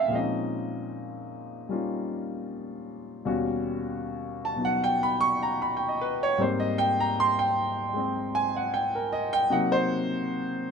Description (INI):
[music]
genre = solo jazz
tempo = 77 BPM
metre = 4/4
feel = swing 68% on 8ths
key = Ab major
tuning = A4 = 440 Hz
[part]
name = warm grand piano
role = solo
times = 0.0-10.7 s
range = Eb2 to Db6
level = -25 LUFS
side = equal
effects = none
[sound]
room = moderate studio reverb, RT60 0.8 s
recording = band playing live in one room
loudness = -25 LUFS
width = side -6 dB against mid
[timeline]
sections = 0.0-10.7 A section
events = grand piano solo 0.0-10.7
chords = 0.1 Bbm11; 3.3 Eb7alt; 6.4 Abmaj9; 9.5 Cm7b5